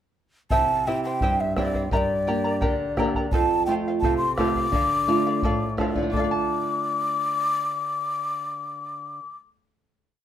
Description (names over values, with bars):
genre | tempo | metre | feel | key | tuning
andean folk, Andean ensemble | 86 BPM | 2/4 | straight | D minor | A4 = 435 Hz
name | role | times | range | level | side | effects
breathy mellow quena | melody | 0.5-9.4 s | D5 to D6 | -25 LUFS | left 1 dB | none
charango | accompaniment | 0.5-9.7 s | E4 to Bb5 | -30 LUFS | left 2 dB | none
flamenco guitar | accompaniment | 0.5-9.5 s | F2 to A5 | -26 LUFS | right 1 dB | none
bombo | percussion | 0.5-6.5 s | none | -28 LUFS | equal | none
room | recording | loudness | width
moderate small room reverb, RT60 0.5 s | rough home demo mix | -21 LUFS | side -10 dB against mid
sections
0.5-6.1 A section; 6.1-8.9 final chord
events
none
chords
0.5 C; 1.9 Gm; 3.3 F; 4.7 Dm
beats
| 0.50 1.21 | 1.92 2.62 | 3.33 4.03 | 4.73 5.43 | 6.13 6.83 | 7.53 8.23